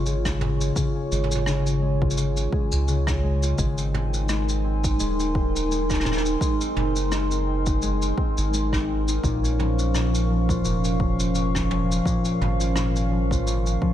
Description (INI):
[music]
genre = folktronica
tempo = 85 BPM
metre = 4/4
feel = swing 56% on 16ths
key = Db major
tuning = A4 = 440 Hz
[part]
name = warbly tape-like pad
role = sustained chords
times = 0.0-13.9 s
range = Db4 to Db6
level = -29 LUFS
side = right 2 dB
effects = chorus, built-in reverb
[part]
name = concert harp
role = arpeggios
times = 0.0-13.9 s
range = Bb2 to F4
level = -26 LUFS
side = left 3 dB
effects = vintage 12-bit sampler grit, ping-pong delay
[part]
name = round analog bass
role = bass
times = 0.0-13.8 s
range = Eb1 to Db2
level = -25 LUFS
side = equal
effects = none
[part]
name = vintage brush drum kit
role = drums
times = 0.1-13.8 s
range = rim click, shaker, toms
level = -31 LUFS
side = right 1 dB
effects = none
[part]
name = electronic kick drum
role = drums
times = 0.3-13.9 s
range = none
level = -27 LUFS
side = equal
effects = none
[sound]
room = little or no reverb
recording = none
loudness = -21 LUFS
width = side -11 dB against mid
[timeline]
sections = 0.0-13.9 A section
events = none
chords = 0.0 Db; 3.6 Abadd9; 9.2 Bbm